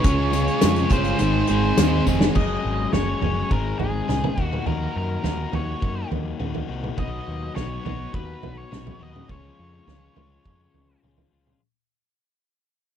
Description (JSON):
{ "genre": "indie rock", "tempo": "104 BPM", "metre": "4/4", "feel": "straight", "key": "Db major", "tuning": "A4 = 440 Hz", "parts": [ { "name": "octave-fuzz lead guitar", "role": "melody", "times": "0.0-11.0 s", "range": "Ab4 to Eb5", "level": "-30 LUFS", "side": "right 1 dB", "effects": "distortion, tape echo" }, { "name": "overdriven electric guitar", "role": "riff", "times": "0.0-11.6 s", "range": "Ab2 to Ab4", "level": "-28 LUFS", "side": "left 9 dB", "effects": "none" }, { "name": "overdriven electric guitar", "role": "riff", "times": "0.0-2.4 s", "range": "Ab2 to Ab4", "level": "-24 LUFS", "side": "right 9 dB", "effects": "analog chorus" }, { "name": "growling picked electric bass", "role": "bass", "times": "0.0-11.5 s", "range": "F1 to Gb2", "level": "-27 LUFS", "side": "equal", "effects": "overdrive" }, { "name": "loose indie drum kit", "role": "drums", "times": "0.0-11.6 s", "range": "crash cymbal, hi-hat, kick drum, snare drum, toms", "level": "-24 LUFS", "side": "equal", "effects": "none" }, { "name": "tambourine", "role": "percussion", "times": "0.0-2.2 s", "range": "none", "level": "-39 LUFS", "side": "left 19 dB", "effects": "none" } ], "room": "little or no reverb", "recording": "none", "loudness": "-20 LUFS", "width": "side -9 dB against mid", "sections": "0.0-2.4 A section; 2.4-11.6 B section", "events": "drum fill 2.1; fade-out 2.4-11.6", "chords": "0.1 Db; 1.2 Ab; 2.4 Gbsus2; 3.5 Ab; 4.4 Ebm; 7.0 Cb; 9.3 Db" }